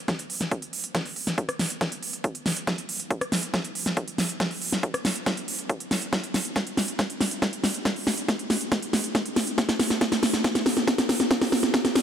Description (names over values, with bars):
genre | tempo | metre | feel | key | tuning
trance | 139 BPM | 4/4 | straight | none | none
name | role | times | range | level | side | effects
big-room dance drum kit | drums | 0.1-12.0 s | hi-hat, rim click, snare drum | -24 LUFS | equal | sidechain pumping on hats
electronic kick drum | drums | 0.1-11.8 s | none | -28 LUFS | equal | high-pass filter on kick
room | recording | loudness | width
wet huge ambient reverb, RT60 6.6 s | none | -24 LUFS | side -9 dB against mid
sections
0.0-12.0 A section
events
build-up 0.0-12.0; drum fill 0.0-12.0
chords
none